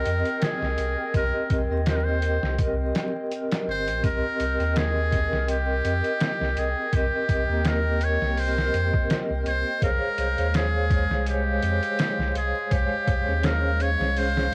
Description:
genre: trip hop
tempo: 83 BPM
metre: 4/4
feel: swing 55% on 16ths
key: C phrygian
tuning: A4 = 441 Hz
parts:
  - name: trumpet with metal mute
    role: melody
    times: 0.0-14.5 s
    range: G4 to Db5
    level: -30 LUFS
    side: equal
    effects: cassette tape, tape echo
  - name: vibraphone with medium hard mallets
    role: accompaniment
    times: 0.0-14.5 s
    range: Ab3 to G5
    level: -32 LUFS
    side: equal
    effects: tremolo, vintage 12-bit sampler grit
  - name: warbly tape-like pad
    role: sustained chords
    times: 0.0-14.5 s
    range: Ab3 to G5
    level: -37 LUFS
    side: equal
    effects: chorus, built-in reverb, vintage 12-bit sampler grit
  - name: warm sub bass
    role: bass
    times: 0.0-14.5 s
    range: G1 to F2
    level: -29 LUFS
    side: equal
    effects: none
  - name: trip hop sampler-style drum kit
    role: drums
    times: 0.1-14.5 s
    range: hi-hat, kick drum, snare drum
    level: -29 LUFS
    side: equal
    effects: cassette tape
room: light reverb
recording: home recording on cassette, vinyl crackle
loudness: -24 LUFS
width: mono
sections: 0.0-4.0 A section; 4.0-14.5 B section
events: none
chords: 0.0 Cm7; 9.8 Db/C

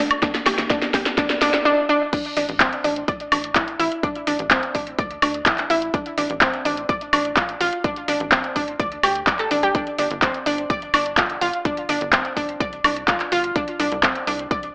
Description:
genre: progressive house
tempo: 126 BPM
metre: 4/4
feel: straight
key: D minor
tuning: A4 = 441 Hz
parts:
  - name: analog pluck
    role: arpeggios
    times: 0.0-14.6 s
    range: C4 to D5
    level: -22 LUFS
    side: equal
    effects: chorus, sidechain pumping, dub echo
  - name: tight sequencer bass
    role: bass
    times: 0.0-14.7 s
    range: G1 to D2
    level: -34 LUFS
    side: equal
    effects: sidechain pumping
  - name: pop drum kit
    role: drums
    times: 0.1-14.7 s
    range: crash cymbal, handclaps, hi-hat, snare drum, woodblock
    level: -20 LUFS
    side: equal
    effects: sidechain pumping on hats, sidechain pumping on perc, sidechain pumping on cymbals
  - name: electronic kick drum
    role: drums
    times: 0.2-14.6 s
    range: none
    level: -25 LUFS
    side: equal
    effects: none
room: moderate digital room reverb, RT60 1.2 s, digital ambience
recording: AM radio sound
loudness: -18 LUFS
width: side -26 dB against mid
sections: 0.0-2.1 A section; 2.1-14.7 B section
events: build-up 0.0-2.1; drum fill 0.0-1.7; filter sweep on synth arpeggio sound 0.0-2.1; drop 2.1-14.7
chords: 0.0 D5/A; 2.1 A5; 5.9 D5/A; 9.7 G5; 13.6 Csus2

